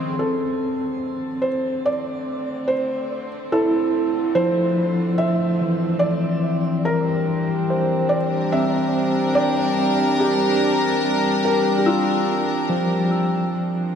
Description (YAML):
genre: ambient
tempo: 72 BPM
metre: 4/4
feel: straight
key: unclear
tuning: A4 = 440 Hz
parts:
  - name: warm symphonic string section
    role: sustained chords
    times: 0.0-14.0 s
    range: Db3 to Bb4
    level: -25 LUFS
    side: left 1 dB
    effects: shimmer reverb
  - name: overdriven tine electric piano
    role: arpeggios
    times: 0.0-14.0 s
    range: E3 to E6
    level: -22 LUFS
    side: equal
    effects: fast tremolo, tape echo
  - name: glass harmonica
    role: texture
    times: 0.0-0.2, 6.8-14.0 s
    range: F4 to C6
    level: -28 LUFS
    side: right 1 dB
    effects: shimmer reverb
  - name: felt-muted upright piano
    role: melody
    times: 0.2-13.1 s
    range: F4 to E5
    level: -24 LUFS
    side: equal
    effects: shimmer reverb, tape echo
room: wet cathedral reverb, RT60 6.0 s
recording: none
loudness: -18 LUFS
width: side -8 dB against mid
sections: 0.2-13.5 A section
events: fade-in on string section 0.2-13.5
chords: 0.2 Dm7; 6.9 Gm7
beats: | 0.20 1.03 1.86 2.70 | 3.53 4.36 5.20 6.03 | 6.86 7.70 8.53 9.36 | 10.20 11.03 11.86 12.70 | 13.53